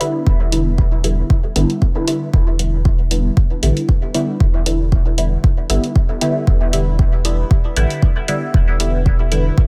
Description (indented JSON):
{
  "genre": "dub techno",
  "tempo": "116 BPM",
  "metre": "4/4",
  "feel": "swing 54% on 16ths",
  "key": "E minor",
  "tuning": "A4 = 439 Hz",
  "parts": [
    { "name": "filtered dub chord stab", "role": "stabs", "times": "0.0-9.7 s", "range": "D3 to E4", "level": "-23 LUFS", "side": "equal", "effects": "phaser, sidechain pumping, dub echo" },
    { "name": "electronic hi-hat", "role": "drums", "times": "0.0-9.4 s", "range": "none", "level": "-25 LUFS", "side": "equal", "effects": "none" },
    { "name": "warm sub bass", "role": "bass", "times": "0.3-9.5 s", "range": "E1 to A1", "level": "-20 LUFS", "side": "equal", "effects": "sidechain pumping" },
    { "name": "electronic kick drum", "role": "drums", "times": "0.3-9.7 s", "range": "none", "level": "-17 LUFS", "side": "equal", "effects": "none" }
  ],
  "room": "little or no reverb",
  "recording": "none",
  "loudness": "-16 LUFS",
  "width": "mono",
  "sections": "0.0-9.7 A section",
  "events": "none",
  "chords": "0.0 Em7"
}